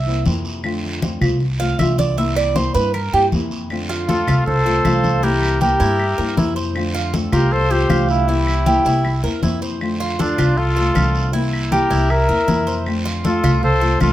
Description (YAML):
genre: latin, Cuban son and guajira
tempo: 157 BPM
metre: 4/4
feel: straight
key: F major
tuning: A4 = 440 Hz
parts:
  - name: Cuban tres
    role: arpeggios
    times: 0.0-14.1 s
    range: E4 to F5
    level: -22 LUFS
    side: right 4 dB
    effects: none
  - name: upright bass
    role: bass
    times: 0.0-14.1 s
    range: C2 to G2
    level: -21 LUFS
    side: equal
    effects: none
  - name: flamenco guitar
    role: accompaniment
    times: 0.1-14.1 s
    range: C3 to F4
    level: -23 LUFS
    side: left 2 dB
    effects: none
  - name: congas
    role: percussion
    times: 0.1-14.1 s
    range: none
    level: -22 LUFS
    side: left 1 dB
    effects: none
  - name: guiro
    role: percussion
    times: 0.3-14.1 s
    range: none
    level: -32 LUFS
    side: right 3 dB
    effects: none
  - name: claves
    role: percussion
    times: 0.6-14.1 s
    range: none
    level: -31 LUFS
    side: left 1 dB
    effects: none
  - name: mellow cor anglais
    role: melody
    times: 4.1-14.1 s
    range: D4 to Bb4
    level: -21 LUFS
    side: equal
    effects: plate reverb
  - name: clear trumpet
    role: second line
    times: 4.1-14.1 s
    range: F4 to E5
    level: -26 LUFS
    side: left 3 dB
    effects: none
room: light reverb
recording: none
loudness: -15 LUFS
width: side -13 dB against mid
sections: 0.0-3.7 A section; 3.7-14.1 B section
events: Cuban tres solo 0.0-3.7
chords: 0.0 C7; 0.6 F6; 2.2 C7; 3.7 F6; 5.2 C7; 6.8 F69; 8.3 C7; 9.8 F6; 11.3 C7; 12.9 F6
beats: 0.26 | 0.64 1.02 1.41 1.79 | 2.17 2.55 2.94 3.32 | 3.70 4.08 4.46 4.85 | 5.23 5.61 5.99 6.37 | 6.76 7.14 7.52 7.90 | 8.28 8.66 9.05 9.43 | 9.81 10.19 10.57 10.96 | 11.34 11.72 12.10 12.48 | 12.87 13.25 13.63 14.01